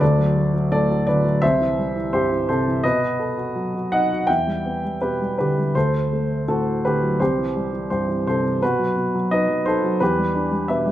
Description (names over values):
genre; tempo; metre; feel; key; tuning
classical, lyrical solo piano; 85 BPM; 4/4; rubato; unclear; A4 = 440 Hz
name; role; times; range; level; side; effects
dark grand piano; solo; 0.0-10.9 s; C2 to G5; -18 LUFS; equal; none
room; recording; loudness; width
moderate recital hall reverb, RT60 1.5 s; none; -18 LUFS; side -13 dB against mid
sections
0.0-10.9 A section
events
none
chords
0.0 D; 1.4 C; 2.8 B7; 4.3 Em7; 5.8 D7; 7.2 C; 8.6 B7; 10.0 Em7